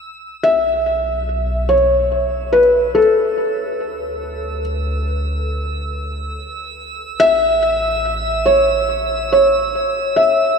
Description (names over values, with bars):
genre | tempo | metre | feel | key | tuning
ambient | 71 BPM | 4/4 | straight | unclear | A4 = 436 Hz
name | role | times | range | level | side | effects
deep rumbling drone | bass | 0.7-10.6 s | A1 to D2 | -25 LUFS | equal | built-in reverb, phaser
drifting glass-harmonics texture | texture | 0.0-10.6 s | E6 | -27 LUFS | right 2 dB | chorus, built-in reverb
felt-muted upright piano | melody | 0.4-10.6 s | A4 to E5 | -15 LUFS | left 1 dB | ping-pong delay
room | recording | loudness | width
wet huge ambient reverb, RT60 8.3 s | none | -14 LUFS | side -5 dB against mid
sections
0.0-10.6 A section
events
fade-in on synth texture 0.0-10.6; fade-out on synth drone 0.0-10.6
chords
0.0 Bsus4; 3.4 D5; 6.8 A